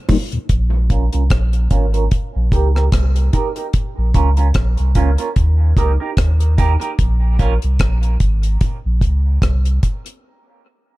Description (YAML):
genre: dub reggae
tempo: 74 BPM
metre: 4/4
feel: swing 57% on 16ths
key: Bb dorian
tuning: A4 = 440 Hz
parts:
  - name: deep reggae drum kit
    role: drums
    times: 0.1-10.2 s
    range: hi-hat, kick drum, rim click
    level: -18 LUFS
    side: equal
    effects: none
  - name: warm sub bass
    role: bass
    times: 0.5-9.8 s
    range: Ab1 to Eb2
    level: -15 LUFS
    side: equal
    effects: none
  - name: clean electric guitar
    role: accompaniment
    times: 0.9-7.5 s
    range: Db4 to Bb4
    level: -24 LUFS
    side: right 6 dB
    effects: phaser, low-pass filter, dub echo
room: small room ambience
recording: dark, warm production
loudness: -14 LUFS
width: side -19 dB against mid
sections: 0.5-11.0 A section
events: break 0.0-0.5, 10.2-11.0; filter sweep on clean electric guitar 0.5-11.0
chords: 0.5 Bbm; 2.1 Eb; 3.7 Bbm; 5.4 Eb; 7.0 N.C.; 8.6 Bbmadd9; 10.2 N.C.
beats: | 0.50 1.31 2.12 2.93 | 3.74 4.55 5.37 6.18 | 6.99 7.80 8.61 9.42